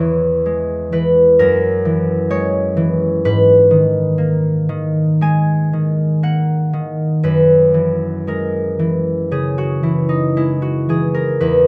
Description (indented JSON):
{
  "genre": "classical, solo harp piece",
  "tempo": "56-66 BPM",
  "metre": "4/4",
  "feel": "rubato",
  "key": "unclear",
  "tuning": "A4 = 440 Hz",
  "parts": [
    { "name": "concert harp", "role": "solo", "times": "0.0-11.7 s", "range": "E2 to G#5", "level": "-16 LUFS", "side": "equal", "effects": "none" }
  ],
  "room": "little or no reverb",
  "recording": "close, detailed microphones",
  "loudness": "-16 LUFS",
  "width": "mono",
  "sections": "0.0-11.7 A section",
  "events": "none",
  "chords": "0.0 E; 1.4 F#9; 3.2 G#m9; 7.2 F#9"
}